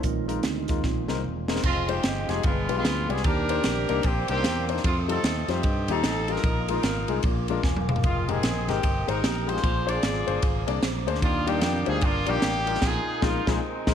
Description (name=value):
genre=uptempo gospel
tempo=150 BPM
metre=4/4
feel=swing 62% on 8ths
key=unclear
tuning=A4 = 441 Hz
part: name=warm concert grand piano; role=accompaniment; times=0.0-13.9 s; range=G2 to Ab5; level=-31 LUFS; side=left 10 dB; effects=none
part: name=percussive tonewheel organ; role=sustained chords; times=0.0-13.9 s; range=Eb3 to Eb6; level=-35 LUFS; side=right 12 dB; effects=fast rotary speaker
part: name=fingered electric bass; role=bass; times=0.0-13.9 s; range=Fb1 to G2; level=-29 LUFS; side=equal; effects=none
part: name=crisp fusion drum kit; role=drums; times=0.0-13.9 s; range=crash cymbal, hi-hat, kick drum, ride cymbal, snare drum, toms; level=-27 LUFS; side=equal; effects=none
part: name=mellow horn section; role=melody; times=1.7-13.9 s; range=Ab3 to D5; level=-28 LUFS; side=equal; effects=none
room=light reverb, studio ambience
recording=1960s-style stereo with parts hard left and right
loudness=-23 LUFS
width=side -8 dB against mid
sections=0.0-1.6 A section; 1.6-13.9 B section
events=tonewheel organ solo 0.0-1.6; drum fill 0.8-1.6, 7.6-8.0; band accent 12.8-13.9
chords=0.0 Bb7sus4; 0.8 Bb9sus4; 1.6 Fm7; 2.4 G7b9; 3.2 Cm9; 4.8 F9; 6.4 Bb7sus4; 7.2 Bb7; 8.0 Fm11; 9.6 Bb9; 11.2 Ebmaj9; 12.8 Bb7sus4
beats=| 0.04 0.44 0.84 1.25 | 1.65 2.05 2.45 2.85 | 3.25 3.64 4.04 4.44 | 4.84 5.24 5.64 6.04 | 6.44 6.84 7.24 7.63 | 8.03 8.43 8.83 9.23 | 9.63 10.03 10.43 10.83 | 11.23 11.63 12.03 12.43 | 12.83 13.23 13.63